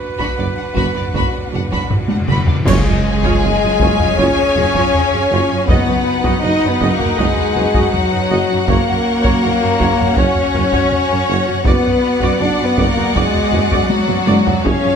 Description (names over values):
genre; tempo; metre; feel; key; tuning
cinematic, epic orchestral film score; 80 BPM; 4/4; straight; unclear; A4 = 441 Hz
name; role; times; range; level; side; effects
rich studio string section; sustained chords; 0.0-15.0 s; G#3 to F#5; -24 LUFS; left 1 dB; none
warm trumpet; stabs; 0.0-1.9 s; B4; -26 LUFS; right 5 dB; none
timpani; percussion; 0.0-6.8 s; F#2; -24 LUFS; left 1 dB; none
clear studio violin section; melody; 0.2-15.0 s; D5 to B5; -23 LUFS; left 4 dB; none
rich symphonic violin section; second line; 0.2-15.0 s; B3 to D#5; -24 LUFS; left 4 dB; none
warm studio viola section; accompaniment; 0.2-14.9 s; D4 to D#5; -24 LUFS; right 1 dB; none
rich symphonic cello section; bass; 0.2-15.0 s; F#2 to D#4; -22 LUFS; right 3 dB; none
taiko ensemble; drums; 0.2-15.0 s; none; -19 LUFS; equal; none
warm studio double bass section; bass; 0.4-14.9 s; F#1 to F#2; -22 LUFS; right 4 dB; none
warm tuba; bass; 0.4-14.7 s; F#1; -24 LUFS; right 5 dB; none
warm French horn section; sustained chords; 1.1-15.0 s; F#3 to D#4; -19 LUFS; left 5 dB; none
clash cymbals and concert bass drum; percussion; 2.7-4.2 s; none; -23 LUFS; equal; none
room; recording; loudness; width
moderate scoring stage reverb, RT60 1.7 s; close, detailed microphones; -13 LUFS; side -7 dB against mid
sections
0.0-2.7 A section; 2.7-15.0 A section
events
timpani fill 0.0-2.7; drum fill 1.9-2.7, 13.9-14.6; band accent 2.7-3.4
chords
0.0 Bm/F#; 2.7 C#/F#; 5.7 B/F#; 8.7 F#; 11.7 Bm/F#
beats
0.39 1.15 1.91 | 2.67 3.42 4.19 4.94 | 5.69 6.43 7.19 7.94 | 8.69 9.43 10.18 10.92 | 11.66 12.41 13.15 13.90 | 14.65